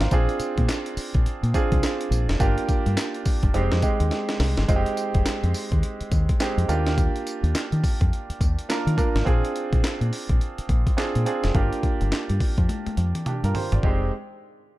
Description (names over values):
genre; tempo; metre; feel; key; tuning
R&B, new jack swing; 105 BPM; 4/4; swing 61% on 16ths; F dorian; A4 = 440 Hz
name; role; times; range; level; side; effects
clear concert grand piano; accompaniment; 0.0-14.1 s; Ab3 to G5; -27 LUFS; right 3 dB; none
deep dub fingered electric bass; bass; 0.0-14.1 s; F1 to Eb3; -23 LUFS; equal; none
breakbeat sampler-style drum kit; drums; 0.0-14.0 s; handclaps, hi-hat, kick drum, snare drum, tambourine, toms; -24 LUFS; equal; none
room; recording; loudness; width
little or no reverb; dark, warm production; -21 LUFS; side -17 dB against mid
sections
0.0-4.7 A section; 4.7-13.8 B section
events
drum fill 4.1-4.7, 12.7-13.8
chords
0.1 Bb7; 2.4 Gm7; 3.5 Fm7; 6.7 Ebmaj9; 9.3 Bb7; 11.5 Gm7; 13.8 Fm7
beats
| 0.12 0.69 1.26 1.83 | 2.40 2.98 3.55 4.12 | 4.69 5.26 5.83 6.40 | 6.97 7.55 8.12 8.69 | 9.26 9.83 10.40 10.97 | 11.55 12.12 12.69 13.26 | 13.83